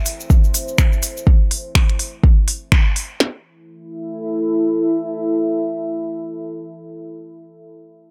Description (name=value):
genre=minimal techno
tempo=124 BPM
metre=4/4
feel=swing 59% on 16ths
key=A minor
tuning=A4 = 440 Hz
part: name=deep dark ambient pad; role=texture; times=0.0-7.4 s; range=E4 to E5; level=-25 LUFS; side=equal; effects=chorus, built-in reverb, sidechain pumping
part: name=minimal click drum kit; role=drums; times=0.1-3.1 s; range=finger snaps, hi-hat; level=-23 LUFS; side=equal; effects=none
part: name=cabasa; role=percussion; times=0.1-1.2 s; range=none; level=-29 LUFS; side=equal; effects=none
part: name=minimal click drum kit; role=drums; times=0.3-3.3 s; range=kick drum, snare drum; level=-16 LUFS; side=equal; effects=none
room=light reverb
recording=none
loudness=-18 LUFS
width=mono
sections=0.0-3.2 A section; 3.2-7.1 B section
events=drop 0.0-3.2; band accent 2.7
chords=0.0 A5